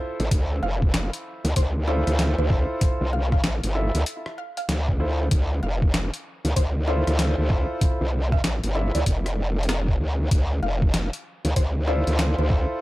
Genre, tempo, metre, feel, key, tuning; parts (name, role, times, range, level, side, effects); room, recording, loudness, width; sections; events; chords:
glitch hop; 96 BPM; 4/4; swing 63% on 16ths; D minor; A4 = 438 Hz
warm grand piano; stabs; 0.0-12.8 s; E4 to E5; -30 LUFS; equal; vintage 12-bit sampler grit, sidechain pumping, analog delay
growl bass; bass; 0.2-12.7 s; F1 to D2; -23 LUFS; equal; chorus
boom bap sampler-style drum kit; drums; 0.2-12.3 s; hi-hat, rim click, snare drum; -28 LUFS; left 1 dB; small room ambience
electronic kick drum; drums; 0.3-12.7 s; -22 LUFS; equal; small room ambience
woody wave-folded pluck; melody; 0.6-12.6 s; C5 to F5; -34 LUFS; left 2 dB; wide subtle chorus, analog delay
little or no reverb; echo-heavy mix; -21 LUFS; side -18 dB against mid
0.0-12.8 A section
0.0 Dm9